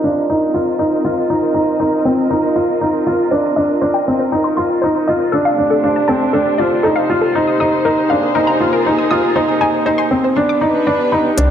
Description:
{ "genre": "piano and strings electronica", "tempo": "119 BPM", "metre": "4/4", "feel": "straight", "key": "unclear", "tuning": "A4 = 440 Hz", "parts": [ { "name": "dark chamber string section", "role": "sustained chords", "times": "0.0-11.5 s", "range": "C3 to Eb5", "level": "-19 LUFS", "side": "right 1 dB", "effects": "none" }, { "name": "warm upright piano", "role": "riff", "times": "0.0-11.5 s", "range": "C4 to F4", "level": "-15 LUFS", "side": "equal", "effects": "low-pass filter, digital delay" }, { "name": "analog pluck", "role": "arpeggios", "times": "3.3-11.5 s", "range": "A4 to Eb6", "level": "-20 LUFS", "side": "left 2 dB", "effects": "chorus, digital delay" }, { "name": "warm sub bass", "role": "bass", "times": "11.4-11.5 s", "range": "C2", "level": "-11 LUFS", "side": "equal", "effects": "tube saturation" }, { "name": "electronic hi-hat", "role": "drums", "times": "11.4-11.5 s", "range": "none", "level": "-21 LUFS", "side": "left 2 dB", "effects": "high-pass filter on hats, low-pass filter on hats, high-pass filter on room, low-pass filter on room" } ], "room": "moderate scoring stage reverb, RT60 1.7 s, small room ambience", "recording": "dark, warm production, low-pass filter", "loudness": "-13 LUFS", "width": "side -9 dB against mid", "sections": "0.0-11.4 A section", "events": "filter sweep on upright piano 0.0-11.4; filter sweep 0.0-11.4", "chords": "0.0 Bbsus4/C; 1.3 Bbsus24/C; 3.3 Cmadd9; 5.3 Dm7/C; 7.3 Bbsus4/C; 9.4 Ab/C; 10.4 G" }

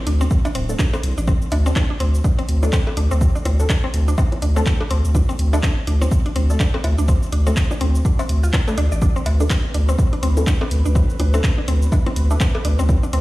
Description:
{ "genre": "minimal techno", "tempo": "124 BPM", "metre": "4/4", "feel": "swing 59% on 16ths", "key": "unclear", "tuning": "A4 = 440 Hz", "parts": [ { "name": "mallet-like synth pluck", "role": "riff", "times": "0.1-13.2 s", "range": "C4 to D5", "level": "-27 LUFS", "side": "equal", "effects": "chorus, phaser, sidechain pumping, tape echo" }, { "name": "saturated sub bass", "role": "bass", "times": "0.1-13.2 s", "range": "D1 to D2", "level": "-17 LUFS", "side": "equal", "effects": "sidechain pumping" }, { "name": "punchy analog drum machine", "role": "drums", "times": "0.1-13.2 s", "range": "handclaps, hi-hat, shaker", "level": "-30 LUFS", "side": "equal", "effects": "none" }, { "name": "electronic kick drum", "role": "drums", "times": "0.3-13.0 s", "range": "none", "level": "-18 LUFS", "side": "equal", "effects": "none" }, { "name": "cowbell and bongos", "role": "percussion", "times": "0.5-13.0 s", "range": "none", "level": "-31 LUFS", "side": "left 1 dB", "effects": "overdrive, dub echo" }, { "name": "filtered dub chord stab", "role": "stabs", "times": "0.7-12.4 s", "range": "A3 to A4", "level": "-30 LUFS", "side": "left 2 dB", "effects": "ensemble chorus, dub echo" }, { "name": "bubbling stepped-filter texture", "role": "texture", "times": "9.3-13.2 s", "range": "B3 to B4", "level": "-33 LUFS", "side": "left 1 dB", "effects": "chorus, built-in reverb, sidechain pumping" } ], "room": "little or no reverb", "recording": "played on a big sound system in a bare room, stone room reverb, lossy compression artefacts", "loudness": "-16 LUFS", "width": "side -18 dB against mid", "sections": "0.0-13.2 A section", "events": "none", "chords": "0.0 D5" }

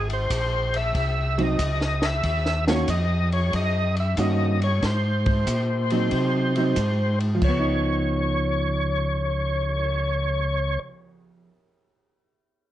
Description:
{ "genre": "soul jazz organ trio", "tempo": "92 BPM", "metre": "4/4", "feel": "swing 68% on 8ths", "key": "unclear", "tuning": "A4 = 440 Hz", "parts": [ { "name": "percussive tonewheel organ", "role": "melody", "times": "0.0-10.8 s", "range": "C5 to Fb5", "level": "-26 LUFS", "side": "left 1 dB", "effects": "slow rotary speaker, overdrive, chorus vibrato" }, { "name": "mellow tonewheel organ", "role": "bass", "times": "0.0-10.8 s", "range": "Ab1 to C3", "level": "-24 LUFS", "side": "equal", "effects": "chorus vibrato, slow rotary speaker" }, { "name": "compact cocktail drum kit", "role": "drums", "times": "0.1-9.9 s", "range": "crash cymbal, cymbal swell, hi-hat, kick drum, ride cymbal, snare drum", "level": "-29 LUFS", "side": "left 1 dB", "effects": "none" }, { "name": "vintage hollow-body jazz guitar", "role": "accompaniment", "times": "1.4-11.6 s", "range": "Eb3 to Gb4", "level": "-26 LUFS", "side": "right 2 dB", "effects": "none" } ], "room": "light reverb", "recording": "worn, warbling old tape, cassette tape, warbly pitch drift, nothing above 10.6 kHz", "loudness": "-21 LUFS", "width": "side -13 dB against mid", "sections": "0.0-7.4 A section; 7.4-10.0 B section", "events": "none", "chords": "0.0 Ab; 2.2 Ebm7; 4.8 Ab7; 7.4 Db9" }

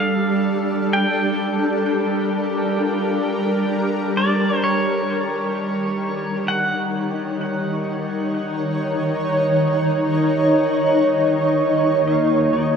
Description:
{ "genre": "ambient", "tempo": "65 BPM", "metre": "4/4", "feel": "straight", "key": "unclear", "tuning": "A4 = 440 Hz", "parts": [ { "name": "pedal steel guitar", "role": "melody", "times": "0.0-12.8 s", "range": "Db5 to G5", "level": "-26 LUFS", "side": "equal", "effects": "shimmer reverb, dub echo" }, { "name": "shimmering ambient pad", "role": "sustained chords", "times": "0.0-12.8 s", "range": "Eb3 to Db5", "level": "-19 LUFS", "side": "equal", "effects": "chorus, built-in reverb, shimmer reverb" }, { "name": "bowed-like drone", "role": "drone", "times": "0.0-12.8 s", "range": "G3 to G4", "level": "-28 LUFS", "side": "left 1 dB", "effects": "built-in reverb" }, { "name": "Celtic harp", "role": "arpeggios", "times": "2.8-12.8 s", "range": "F4 to Bb4", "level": "-40 LUFS", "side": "right 1 dB", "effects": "none" }, { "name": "dark studio cello section", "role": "bass", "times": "12.0-12.8 s", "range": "Eb2", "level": "-24 LUFS", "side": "left 1 dB", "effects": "none" } ], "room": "wet plate reverb, RT60 2.4 s", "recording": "echo-heavy mix", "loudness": "-18 LUFS", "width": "side -6 dB against mid", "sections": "0.0-12.0 A section", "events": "none", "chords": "0.0 Gm7; 4.7 Ebm7" }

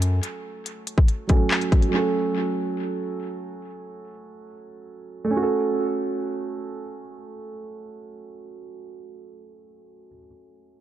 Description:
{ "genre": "hip hop, drill", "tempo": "141 BPM", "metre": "4/4", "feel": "half-time", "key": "F# minor", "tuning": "A4 = 437 Hz", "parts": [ { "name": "dark concert grand piano", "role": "accompaniment", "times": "0.0-10.8 s", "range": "F#3 to A4", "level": "-27 LUFS", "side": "right 3 dB", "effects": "tape echo" }, { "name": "drill drum kit", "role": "drums", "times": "0.0-1.9 s", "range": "handclaps, hi-hat, kick drum", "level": "-20 LUFS", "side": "left 1 dB", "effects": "tape echo" } ], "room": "light reverb", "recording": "echo-heavy mix, low-pass filter", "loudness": "-22 LUFS", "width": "side -12 dB against mid", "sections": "0.0-5.3 A section; 5.3-8.7 B section", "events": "filter sweep 0.0-5.3", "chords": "0.0 F#m" }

